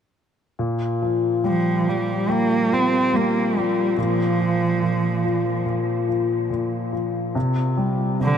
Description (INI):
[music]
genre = pop ballad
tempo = 71 BPM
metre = 4/4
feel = straight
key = unclear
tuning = A4 = 435 Hz
[part]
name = warm concert grand piano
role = accompaniment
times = 0.6-8.4 s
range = Bb2 to G3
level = -21 LUFS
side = left 2 dB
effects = wide subtle chorus
[part]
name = warm cello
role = melody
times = 1.5-8.4 s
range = D3 to C4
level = -22 LUFS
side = right 3 dB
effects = tape echo
[sound]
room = moderate huge ambient reverb, RT60 9.2 s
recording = dreamy mix soaked in reverb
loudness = -19 LUFS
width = side -8 dB against mid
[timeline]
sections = 0.6-8.4 A section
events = none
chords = 0.6 Bb5; 7.4 C5